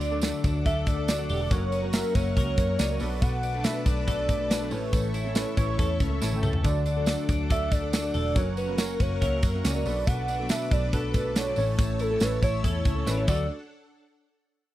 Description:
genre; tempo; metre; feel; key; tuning
jangly indie pop; 140 BPM; 4/4; straight; D major; A4 = 440 Hz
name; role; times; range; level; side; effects
warm velvety synth lead; melody; 0.0-13.5 s; A4 to F#5; -31 LUFS; right 1 dB; chorus
fingerpicked steel-string acoustic guitar; accompaniment; 0.0-13.5 s; F#2 to A#4; -39 LUFS; right 3 dB; none
warm analog keys; accompaniment; 0.0-13.5 s; C#4 to A5; -37 LUFS; right 3 dB; chorus
string machine, violas; sustained chords; 0.0-13.5 s; D4 to E6; -40 LUFS; equal; ensemble chorus
twelve-string electric guitar; arpeggios; 0.0-13.5 s; F#2 to A#4; -32 LUFS; left 3 dB; slapback echo
vintage muted picked electric bass; bass; 0.0-13.5 s; E1 to F#2; -30 LUFS; equal; none
modern studio drum kit; drums; 0.0-13.4 s; crash cymbal, hi-hat, kick drum, snare drum, toms; -26 LUFS; equal; none
tambourine; percussion; 0.0-13.5 s; none; -43 LUFS; right 9 dB; none
room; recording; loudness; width
little or no reverb; dry, close 1970s-style studio recording; -24 LUFS; side -14 dB against mid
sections
0.0-13.5 A section; 13.5-14.7 B section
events
synth keys fill 6.0-6.6, 12.9-13.5; drum fill 6.2-6.6, 13.1-13.5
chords
0.0 D; 1.5 F#; 3.0 Bm7; 4.7 A; 6.6 D; 8.4 F#; 9.9 Bm7; 11.6 A; 13.3 D; 13.5 N.C.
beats
0.23 0.66 1.08 | 1.51 1.94 2.37 2.79 | 3.22 3.65 4.08 4.50 | 4.93 5.36 5.79 6.22 | 6.64 7.07 7.50 7.93 | 8.36 8.79 9.21 9.64 | 10.07 10.50 10.93 11.36 | 11.78 12.21 12.64 13.07 | 13.50

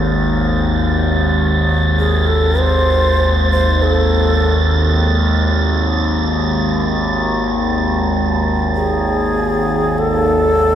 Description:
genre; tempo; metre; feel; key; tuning
dark ambient drone; free time; none; none; unclear; A4 = 441 Hz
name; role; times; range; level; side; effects
overtone-sweeping drone; drone; 0.0-10.8 s; G#1 to D#2; -15 LUFS; equal; chorus, built-in reverb
wind-like tuned noise texture; texture; 0.0-10.8 s; A6; -22 LUFS; right 3 dB; built-in reverb
breathy mellow shakuhachi; melody; 2.0-10.8 s; G#4 to B#4; -18 LUFS; equal; tape echo
room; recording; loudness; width
wet echo chamber reverb, RT60 2.4 s; echo-heavy mix; -13 LUFS; side -10 dB against mid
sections
0.0-10.8 A section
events
none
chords
0.0 G#5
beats
free time

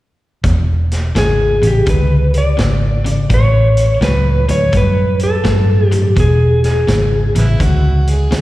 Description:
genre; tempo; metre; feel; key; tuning
electric blues shuffle; 84 BPM; 4/4; swing 66% on 8ths; E mixolydian; A4 = 441 Hz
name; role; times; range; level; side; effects
cranked stack guitar; riff; 0.4-8.4 s; E2 to G3; -19 LUFS; left 2 dB; overdrive
vintage muted fingered electric bass; bass; 0.4-8.4 s; E1 to G2; -13 LUFS; equal; none
vintage drum kit; drums; 0.4-8.4 s; hi-hat, kick drum, snare drum; -20 LUFS; equal; none
clean lap steel guitar; melody; 1.2-7.3 s; G4 to D5; -17 LUFS; equal; slapback echo
overdriven harmonica; second line; 7.4-8.4 s; B3 to G#4; -22 LUFS; right 2 dB; slapback echo
room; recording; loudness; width
light reverb; live gig heard through the venue's PA, recital hall reverb; -11 LUFS; side -16 dB against mid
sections
0.4-8.4 A section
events
none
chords
0.4 E7; 3.3 A7; 6.2 E7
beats
| 0.45 1.16 1.88 2.59 | 3.31 4.02 4.74 5.45 | 6.17 6.88 7.59 8.31

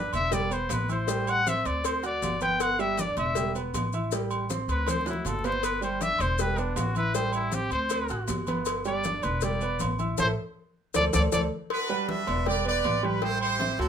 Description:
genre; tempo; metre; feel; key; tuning
latin, salsa; 158 BPM; 4/4; straight; G major; A4 = 440 Hz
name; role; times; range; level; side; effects
bright trumpet; melody; 0.0-11.4 s; D4 to G5; -28 LUFS; left 2 dB; none
clear grand piano; accompaniment; 0.0-13.9 s; F#3 to F#6; -32 LUFS; right 5 dB; none
upright bass; bass; 0.0-13.9 s; E1 to D2; -32 LUFS; equal; none
agogo bells and timbales; percussion; 0.1-13.9 s; none; -35 LUFS; right 3 dB; none
congas; percussion; 0.1-13.9 s; none; -35 LUFS; left 3 dB; none
cowbell; percussion; 0.1-13.9 s; none; -36 LUFS; left 8 dB; none
maracas; percussion; 0.1-11.4 s; none; -38 LUFS; left 9 dB; none
bright trumpet section; melody; 11.7-13.9 s; D4 to E5; -28 LUFS; right 3 dB; none
room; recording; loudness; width
light reverb; minimal, uncompressed stereo recording; -25 LUFS; side -8 dB against mid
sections
0.0-11.7 A section; 11.7-13.9 B section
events
trumpet solo 0.0-11.7; drum fill 4.9-5.6, 10.9-11.7; band accent 10.2-11.7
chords
0.3 Em; 1.1 Am7; 1.8 D7; 2.6 G; 3.4 Em; 4.1 Am7; 4.9 D7; 5.6 G; 6.4 Em; 7.1 Am7; 7.9 D7; 8.7 G; 9.4 Em7; 10.2 Am; 10.9 D5; 11.7 Gmaj7; 12.5 Em7; 13.2 Am7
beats
0.33 0.70 | 1.08 1.46 1.84 2.22 | 2.60 2.98 3.36 3.73 | 4.11 4.49 4.87 5.25 | 5.63 6.01 6.39 6.77 | 7.15 7.53 7.91 8.29 | 8.67 9.05 9.43 9.81 | 10.19 10.56 10.94 11.32 | 11.70 12.08 12.46 12.84 | 13.22 13.60

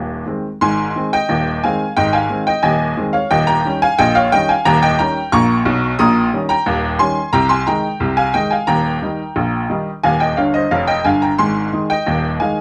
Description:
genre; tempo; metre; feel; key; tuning
ragtime piano; 89 BPM; 2/4; straight; Ab major; A4 = 441 Hz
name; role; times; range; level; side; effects
bright upright piano; solo; 0.0-12.6 s; Eb1 to Eb6; -16 LUFS; equal; none
room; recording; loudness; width
little or no reverb; close, detailed microphones; -16 LUFS; mono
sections
0.6-12.6 A section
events
upright piano fill 10.4-11.4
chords
0.0 Ab; 3.3 Eb7; 6.0 Eb7/Bb; 7.3 Ab/C; 8.7 Eb; 11.4 Ab5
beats
| 0.62 1.29 | 1.97 2.64 | 3.31 3.98 | 4.65 5.32 | 5.99 6.66 | 7.33 8.01 | 8.68 9.36 | 10.04 10.72 | 11.39 12.07

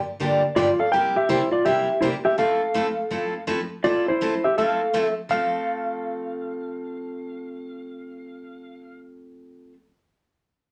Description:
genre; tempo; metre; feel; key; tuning
country; 164 BPM; 4/4; swing 64% on 8ths; F major; A4 = 440 Hz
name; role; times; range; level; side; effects
picked steel-string acoustic guitar; accompaniment; 0.2-9.7 s; G2 to A4; -29 LUFS; equal; none
clean lap steel guitar; melody; 0.6-9.0 s; E4 to G5; -24 LUFS; equal; none
room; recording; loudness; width
wet studio reverb, RT60 0.6 s; none; -23 LUFS; mono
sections
0.0-3.8 A section; 3.8-5.3 B section; 5.3-8.2 C section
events
none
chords
0.0 Gm7; 0.9 C7; 2.4 Fmaj7; 5.3 F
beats
0.19 0.55 | 0.92 1.28 1.65 2.01 | 2.38 2.75 3.11 3.48 | 3.84 4.21 4.57 4.94 | 5.30 5.67 6.03 6.40 | 6.76 7.13 7.50 7.86

